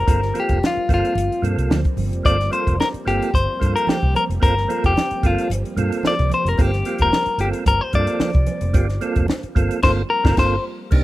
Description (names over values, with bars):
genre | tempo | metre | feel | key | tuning
funk | 111 BPM | 4/4 | straight | G minor | A4 = 440 Hz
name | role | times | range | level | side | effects
clean electric guitar | accompaniment | 0.0-10.6 s | F4 to D5 | -21 LUFS | left 3 dB | none
soft string machine | sustained chords | 0.0-11.0 s | Eb3 to D5 | -32 LUFS | right 1 dB | ensemble chorus
vintage muted fingered electric bass | bass | 0.0-11.0 s | F1 to G2 | -22 LUFS | equal | none
percussive tonewheel organ | stabs | 0.1-11.0 s | Bb3 to A4 | -26 LUFS | right 4 dB | chorus vibrato, fast rotary speaker
compact cocktail drum kit | drums | 0.1-11.0 s | crash cymbal, hi-hat, kick drum, snare drum | -20 LUFS | equal | none
congas | percussion | 0.1-11.0 s | none | -30 LUFS | right 7 dB | none
cowbell | percussion | 2.2-11.0 s | none | -37 LUFS | equal | none
room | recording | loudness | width
small room ambience | rough home demo mix | -17 LUFS | side -16 dB against mid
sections
0.0-10.9 A section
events
clean electric guitar solo 0.0-10.9; band accent 9.8-10.9; break 10.4-10.9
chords
0.0 Gm11